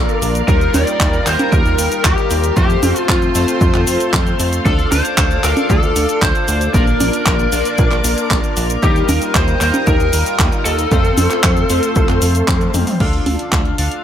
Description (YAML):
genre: italo disco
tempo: 115 BPM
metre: 4/4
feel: straight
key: unclear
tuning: A4 = 441 Hz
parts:
  - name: lead guitar through a small cranked amp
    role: melody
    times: 0.0-12.7 s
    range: F4 to D5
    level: -19 LUFS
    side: left 2 dB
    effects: overdrive, digital delay
  - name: string machine, full ensemble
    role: sustained chords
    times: 0.0-13.0 s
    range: A4 to Eb6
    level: -23 LUFS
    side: equal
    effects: ensemble chorus
  - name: chorused polysynth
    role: stabs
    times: 0.0-14.0 s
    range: G3 to F5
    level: -22 LUFS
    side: left 2 dB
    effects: none
  - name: chorused synth bass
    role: bass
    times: 0.0-13.9 s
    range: Bb1 to F2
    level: -19 LUFS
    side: equal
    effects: none
  - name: house drum kit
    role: drums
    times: 0.1-14.0 s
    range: cabasa, congas, crash cymbal, handclaps, hi-hat, toms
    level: -20 LUFS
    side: right 1 dB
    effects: none
  - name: electronic kick drum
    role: drums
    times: 0.5-13.6 s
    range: none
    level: -17 LUFS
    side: equal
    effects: none
room: little or no reverb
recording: none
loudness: -12 LUFS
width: side -10 dB against mid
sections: 0.0-13.0 A section; 13.0-14.0 B section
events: band accent 12.5; drum fill 12.7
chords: 0.5 Ebadd9; 2.6 F; 4.7 Dm; 6.7 Bb; 8.8 Ebadd9; 10.9 F; 13.0 Dm